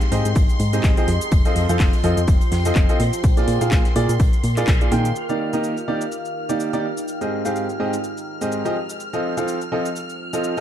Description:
piano house; 125 BPM; 4/4; swing 56% on 16ths; Eb major; A4 = 440 Hz
string machine, violins; sustained chords; 0.0-10.6 s; C6 to F6; -32 LUFS; equal; ensemble chorus, sidechain pumping
house drum kit; drums; 0.0-10.6 s; handclaps, hi-hat, shaker; -31 LUFS; left 1 dB; overdrive
raw garage drum kit; drums; 0.0-5.0 s; hi-hat, snare drum; -40 LUFS; right 2 dB
deep dark ambient pad; texture; 0.0-10.6 s; Eb4 to D6; -29 LUFS; right 1 dB; chorus, built-in reverb, sidechain pumping
bright upright piano; riff; 0.1-10.6 s; Ab2 to G5; -23 LUFS; right 1 dB; sidechain pumping, dub echo
solid FM bass; bass; 0.1-5.1 s; F1 to Bb2; -21 LUFS; equal; sidechain pumping
electronic kick drum; drums; 0.4-4.8 s; -18 LUFS; equal; overdrive
light reverb, small room ambience; dark, warm production; -18 LUFS; side -10 dB against mid
0.0-5.2 A section; 5.2-10.6 B section
band accent 4.7
0.0 Abmaj7; 1.1 F7; 3.0 Bb7; 5.2 Ebmaj7; 7.1 Abmaj7; 8.8 F7

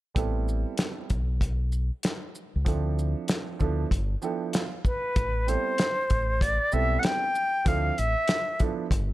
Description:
hip hop, jazz-hop; 96 BPM; 4/4; swing 66% on 16ths; A minor; A4 = 440 Hz
warm upright piano; accompaniment; 0.1-8.9 s; F3 to G5; -33 LUFS; right 7 dB
deep dub fingered electric bass; bass; 0.2-9.1 s; G1 to D2; -27 LUFS; equal
cloth-damped thuddy drum kit; drums; 0.2-9.1 s; hi-hat, kick drum, shaker, snare drum; -27 LUFS; equal
bright reedy silver concert flute; melody; 4.9-8.6 s; B4 to G5; -26 LUFS; left 1 dB
small room ambience; -24 LUFS; side -16 dB against mid
0.2-5.2 A section; 5.2-9.1 B section
upright piano fill 3.9-5.2
0.2 Am9; 2.7 Dm7; 3.9 G13; 5.2 Am9; 7.7 Dm7

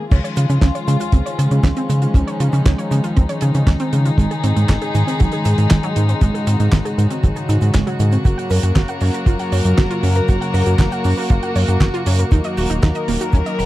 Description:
italo disco; 118 BPM; 4/4; straight; Db major; A4 = 440 Hz
dark chamber string section; sustained chords; 0.0-13.7 s; Db3 to Bb4; -21 LUFS; left 1 dB
analog pluck; arpeggios; 0.1-13.7 s; Eb3 to Gb5; -25 LUFS; right 4 dB; chorus, tape echo
round analog bass; bass; 0.1-13.7 s; Eb1 to Db3; -18 LUFS; equal
damped 70s drum kit; drums; 0.1-13.7 s; cabasa, crash cymbal, handclaps, hi-hat, snare drum; -24 LUFS; right 1 dB
kick drum; drums; 0.1-13.4 s; -14 LUFS; equal
little or no reverb; dry, close 1970s-style studio recording; -14 LUFS; side -16 dB against mid
0.1-13.7 A section
0.1 Dbadd9; 4.2 Absus4; 8.2 Gb; 12.3 Ebm

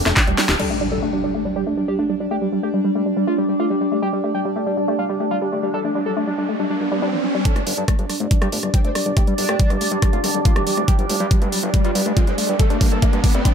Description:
psychedelic trance; 140 BPM; 4/4; straight; A4 = 438 Hz
overtone-sweeping drone; sustained chords; 0.0-13.5 s; D4 to G5; -26 LUFS; right 1 dB; chorus, built-in reverb, sidechain pumping
fat analog bass; bass; 0.0-0.6, 7.6-13.4 s; D1 to G2; -27 LUFS; equal; high-pass filter
warbly tape-like pad; texture; 0.0-13.5 s; D4 to G5; -29 LUFS; right 1 dB; chorus, built-in reverb, sidechain pumping
woody wave-folded pluck; riff; 0.1-13.5 s; F3 to G4; -25 LUFS; moving between left 6 dB and right 2 dB; chorus, auto-pan, vintage 12-bit sampler grit, sidechain pumping, dub echo
drum and bass drum kit; drums; 0.1-0.7, 7.5-13.5 s; crash cymbal, handclaps, hi-hat, rim click, snare drum; -23 LUFS; equal; overdrive
electronic kick drum; drums; 0.2-0.3, 7.5-13.5 s; -17 LUFS; equal; overdrive
formant-sweep wobble bass; second line; 0.4-0.6, 8.7-13.5 s; G3 to D4; -33 LUFS; right 1 dB; analog chorus, sidechain pumping, high-pass filter, digital delay
overdriven synth lead; melody; 0.6-13.5 s; G3 to A4; -25 LUFS; equal; phaser, cassette tape, sidechain pumping, digital delay
impact and riser; sound effects; 0.6-13.5 s; -29 LUFS; right 1 dB
light reverb; -17 LUFS; side -7 dB against mid
0.6-7.5 A section; 7.5-13.5 B section
drum fill 0.0-0.6, 10.9-13.5; band accent 0.5; impact 0.6-2.3; filter sweep on synth arpeggio sound 0.6-7.5, 7.5-13.5; riser 5.3-7.5, 7.5-13.5; build-up 7.5-13.5
0.0 G5

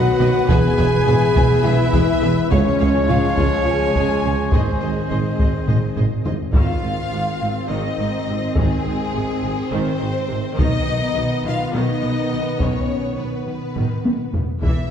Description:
cinematic, epic orchestral film score; 208 BPM (eighths); 7/8; straight; A4 = 440 Hz
warm symphonic violin section; second line; 0.0-14.9 s; G#3 to G#5; -29 LUFS; left 3 dB
mellow French horn section; sustained chords; 0.0-14.9 s; G#3 to G#4; -25 LUFS; left 3 dB
warm symphonic string section; sustained chords; 0.0-6.5 s; B3 to E5; -28 LUFS; equal
warm trombone section; sustained chords; 0.0-14.9 s; D#3 to B#3; -29 LUFS; equal
warm trumpet; stabs; 0.0-6.3 s; B4 to C#5; -25 LUFS; equal
warm tuba; bass; 0.0-14.7 s; E1 to C#2; -27 LUFS; right 2 dB
warm symphonic violin section; melody; 0.2-14.9 s; G#4 to F#5; -28 LUFS; left 4 dB
warm studio viola section; accompaniment; 0.2-14.9 s; B#2 to D#5; -29 LUFS; left 1 dB
rich symphonic cello section; bass; 0.2-14.7 s; C#2 to B2; -27 LUFS; right 2 dB
warm symphonic double bass section; bass; 0.2-14.7 s; E1 to C#2; -25 LUFS; right 2 dB
taiko ensemble; drums; 0.5-14.9 s; -21 LUFS; equal
wet scoring stage reverb, RT60 1.8 s; heard from further back in the room; -17 LUFS; side -8 dB against mid
0.0-6.5 A section; 6.5-14.9 B section
drum fill 5.7-6.5, 13.8-14.6
0.5 E; 2.5 C#; 4.5 G#; 10.6 B

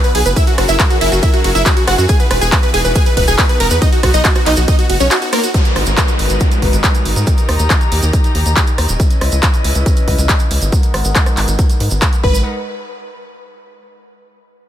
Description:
uplifting trance; 139 BPM; 4/4; straight; G# minor; A4 = 439 Hz
supersaw chords; melody; 0.0-5.5, 12.2-12.4 s; A#3 to A#5; -18 LUFS; right 1 dB; sidechain pumping, dub echo
wide unison pluck; second line; 0.0-5.5 s; F#4 to A#5; -22 LUFS; equal; sidechain pumping, dub echo
rich chamber string section; sustained chords; 0.0-12.4 s; C#3 to A#5; -23 LUFS; left 2 dB; sidechain pumping, low-pass filter
house drum kit; drums; 0.0-12.2 s; handclaps, hi-hat, ride cymbal, rim click; -19 LUFS; equal; overdrive
tube shaker; percussion; 0.0-12.4 s; -26 LUFS; right 4 dB
tight sequencer bass; bass; 0.1-12.4 s; D#1 to G#2; -16 LUFS; equal; sidechain pumping
electronic kick drum; drums; 0.4-12.3 s; -14 LUFS; equal; overdrive
downlifter; sound effects; 5.5-9.0 s; -25 LUFS; equal
digital ambience; -11 LUFS; side -11 dB against mid
0.0-5.5 A section; 5.5-12.4 B section; 12.4-14.2 C section
drop 0.0-5.5; filter sweep on string section 5.5-12.4
0.4 F#7; 2.1 Emaj7; 3.8 B; 5.5 G#m7; 7.3 D#; 9.0 C#m7; 10.7 G#m7; 12.4 N.C.

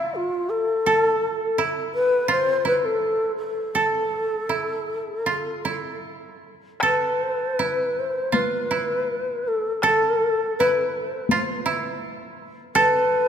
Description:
japanese traditional, Japanese chamber music; 76-86 BPM; 4/4; rubato; A hirajoshi; A4 = 441 Hz
breathy long shakuhachi; melody; 0.0-13.3 s; F4 to E5; -23 LUFS; left 2 dB
koto; second line; 0.0-13.3 s; E4 to A4; -24 LUFS; right 4 dB
taiko ensemble; percussion; 6.8-12.9 s; -29 LUFS; left 2 dB
wet church reverb, RT60 3.4 s; minimal, uncompressed stereo recording; -20 LUFS; side -8 dB against mid
0.0-6.8 A section; 6.8-13.3 B section

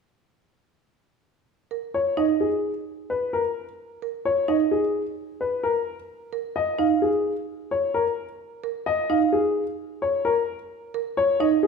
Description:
classical, minimalist pattern music; 130 BPM; 5/4; straight; G# dorian; A4 = 440 Hz
marimba with medium mallets; arpeggios; 1.7-11.7 s; D#4 to A#4; -26 LUFS; right 12 dB
dark baby grand piano; melody; 1.9-11.7 s; G#4 to E#5; -23 LUFS; left 4 dB
moderate recital hall reverb, RT60 1.3 s; minimal, uncompressed stereo recording; -22 LUFS; side -5 dB against mid
1.3-11.7 A section
1.3 G#sus2 (rootless)

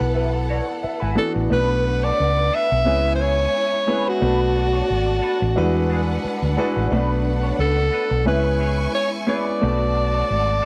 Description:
soul; 89 BPM; 4/4; swing 54% on 16ths; B dorian; A4 = 440 Hz
breathy alto saxophone; melody; 0.0-10.7 s; F#4 to E5; -24 LUFS; equal
warm studio violin section; second line; 0.0-10.7 s; B3 to C#6; -32 LUFS; equal
warm grand piano; accompaniment; 0.0-10.7 s; E3 to A5; -27 LUFS; equal
electric guitar through a small old amp; riff; 0.0-10.7 s; G#3 to C#5; -34 LUFS; equal; wah, analog chorus
hollow-body short-scale fingered electric bass; bass; 0.0-10.6 s; G#1 to E2; -24 LUFS; equal
small room ambience; dry, close 1970s-style studio recording; -20 LUFS; mono
0.0-1.5 A section; 1.5-10.7 B section
grand piano fill 0.2-1.5
0.0 D69; 1.5 Bm7; 2.9 C#m7; 4.2 Bm7; 5.6 E9; 6.9 Bm7; 8.3 C#m7; 9.6 Bm7

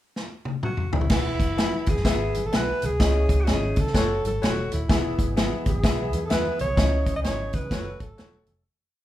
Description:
uptempo 1960s-style soul; 127 BPM; 4/4; swing 62% on 8ths; E major; A4 = 440 Hz
natural country drum kit; drums; 0.2-8.5 s; crash cymbal, hi-hat, kick drum, snare drum, toms; -24 LUFS; equal
clear alto saxophone; melody; 0.6-8.5 s; E4 to D#5; -29 LUFS; right 1 dB
bright upright piano; accompaniment; 1.1-8.5 s; C#3 to E5; -30 LUFS; left 4 dB
vintage muted fingered electric bass; bass; 1.1-8.6 s; D#1 to C#3; -28 LUFS; equal
congas; percussion; 1.1-8.6 s; -37 LUFS; right 1 dB
tonewheel organ; sustained chords; 4.9-8.6 s; E3 to A4; -38 LUFS; equal; chorus vibrato, slow rotary speaker
light reverb; band playing live in one room; -21 LUFS; side -13 dB against mid
0.0-1.1 pickup bar; 1.1-8.6 verse
drum fill 0.2-1.1; fade-out 6.8-8.6
0.0 N.C.; 1.1 E; 3.0 C#madd9; 3.9 F#m; 4.9 E; 6.8 C#madd9; 7.7 F#m

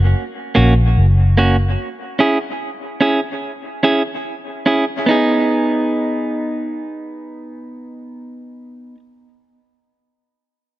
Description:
reggae; 73 BPM; 4/4; swing 61% on 16ths; G# minor; A4 = 440 Hz
vintage muted fingered electric bass; bass; 0.0-1.8 s; F#1 to A#1; -12 LUFS; equal
clean electric guitar; accompaniment; 0.5-9.0 s; A#3 to G#4; -18 LUFS; right 1 dB; dub echo
light reverb; echo-heavy mix; -14 LUFS; side -15 dB against mid
0.0-5.1 A section; 5.1-8.4 B section
0.0 F#; 1.8 C#m; 5.1 G#m

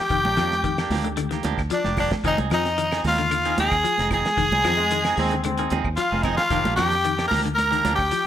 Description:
afrobeat; 112 BPM; 4/4; straight; F dorian; A4 = 440 Hz
raspy tenor saxophone; melody; 0.0-8.3 s; D4 to Bb4; -23 LUFS; left 2 dB; slapback echo
bright trumpet; second line; 0.0-8.3 s; D5 to Bb5; -29 LUFS; right 3 dB
semi-hollow electric guitar; arpeggios; 0.1-8.3 s; D3 to F3; -30 LUFS; left 10 dB; lush chorus
fingered electric bass; bass; 0.1-8.1 s; F1 to F2; -28 LUFS; equal
cloth-damped thuddy drum kit; drums; 0.1-8.2 s; hi-hat, kick drum, snare drum; -30 LUFS; equal
semi-hollow electric guitar; stabs; 0.2-8.3 s; F3 to Ab4; -30 LUFS; right 9 dB
congas; percussion; 0.2-8.0 s; -30 LUFS; right 3 dB
claves; percussion; 0.4-8.1 s; -37 LUFS; left 10 dB
clear trombone section; second line; 4.6-5.8 s; F3 to C4; -28 LUFS; left 2 dB
light reverb, small room reverb; -19 LUFS; side -10 dB against mid
0.0-8.3 A section
0.0 Ebmaj9/F; 2.2 Fm7; 6.5 Ebmaj9/F

